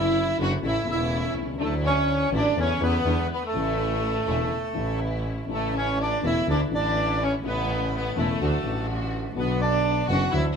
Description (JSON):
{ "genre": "tango", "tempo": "124 BPM", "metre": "4/4", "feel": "rubato", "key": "A major", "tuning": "A4 = 443 Hz", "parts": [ { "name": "bandoneon", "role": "melody", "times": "0.0-10.5 s", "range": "A3 to F#5", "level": "-27 LUFS", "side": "right 1 dB", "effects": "none" }, { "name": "rich studio violin section", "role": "second line", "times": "0.0-10.6 s", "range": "A3 to F#4", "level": "-30 LUFS", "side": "left 1 dB", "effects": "none" }, { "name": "dark upright piano", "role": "accompaniment", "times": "0.0-10.5 s", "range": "E1 to F#4", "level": "-31 LUFS", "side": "left 4 dB", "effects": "none" }, { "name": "warm symphonic string section", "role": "stabs", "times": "0.0-10.5 s", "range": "D3 to F#4", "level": "-34 LUFS", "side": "equal", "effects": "none" }, { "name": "warm double bass", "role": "bass", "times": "0.0-10.5 s", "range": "E1 to E2", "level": "-27 LUFS", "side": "right 1 dB", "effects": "none" } ], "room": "light reverb", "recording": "band playing live in one room", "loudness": "-22 LUFS", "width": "side -6 dB against mid", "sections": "0.0-5.5 A section; 5.5-10.6 A section", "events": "none", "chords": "0.0 Dadd9/F#; 0.6 A; 1.6 Dadd9; 2.6 A/E; 3.0 E7; 3.5 A; 6.5 Dsus2; 7.4 A; 8.4 D; 9.4 Bmadd9", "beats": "0.14 0.62 1.11 | 1.59 2.08 2.56 3.05 | 3.54 4.02 4.51 5.00 | 5.49 5.98 6.47 6.96 | 7.44 7.93 8.41 8.90 | 9.38 9.86 10.34" }